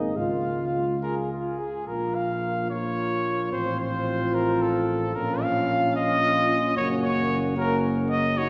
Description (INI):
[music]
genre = classical, brass quintet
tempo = 74 BPM (dotted quarters)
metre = 6/8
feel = rubato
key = Bb minor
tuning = A4 = 440 Hz
[part]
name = warm trumpet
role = melody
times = 0.0-8.5 s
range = Ab4 to F5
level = -29 LUFS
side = equal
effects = none
[part]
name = mellow flugelhorn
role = second line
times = 0.0-8.5 s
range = Eb4 to Ab4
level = -33 LUFS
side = equal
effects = none
[part]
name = clear French horn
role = accompaniment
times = 0.0-8.5 s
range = Bb3 to Ab4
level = -34 LUFS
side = equal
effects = none
[part]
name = mellow euphonium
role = accompaniment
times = 0.0-8.5 s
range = F3 to Bb3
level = -34 LUFS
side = equal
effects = none
[part]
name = dark tuba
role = bass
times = 0.0-8.5 s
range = Gb1 to Db2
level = -32 LUFS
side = equal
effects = none
[sound]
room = wet church reverb, RT60 2.5 s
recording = heard from further back in the room, nothing above 7.5 kHz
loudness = -25 LUFS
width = mono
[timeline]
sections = 0.0-1.9 A section; 1.9-8.5 B section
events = none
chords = 0.2 Db; 1.9 Bbm; 3.5 F/A; 5.2 Bbm; 6.8 Gb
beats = | 0.16 1.02 | 1.88 2.71 | 3.53 4.35 | 5.16 5.96 | 6.77 7.58 | 8.38